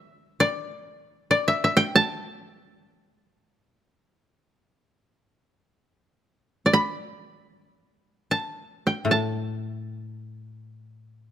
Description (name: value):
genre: japanese traditional, Japanese chamber music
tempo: free time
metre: none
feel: none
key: A suspended pentatonic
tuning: A4 = 440 Hz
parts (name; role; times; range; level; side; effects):
- koto; melody; 0.0-11.3 s; D5 to B5; -20 LUFS; equal; none
- koto; accompaniment; 0.0-0.2, 9.0-11.3 s; A2 to D3; -30 LUFS; left 2 dB; none
room: light reverb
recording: close, detailed microphones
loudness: -22 LUFS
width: side -10 dB against mid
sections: 0.0-11.3 A section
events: none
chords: none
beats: free time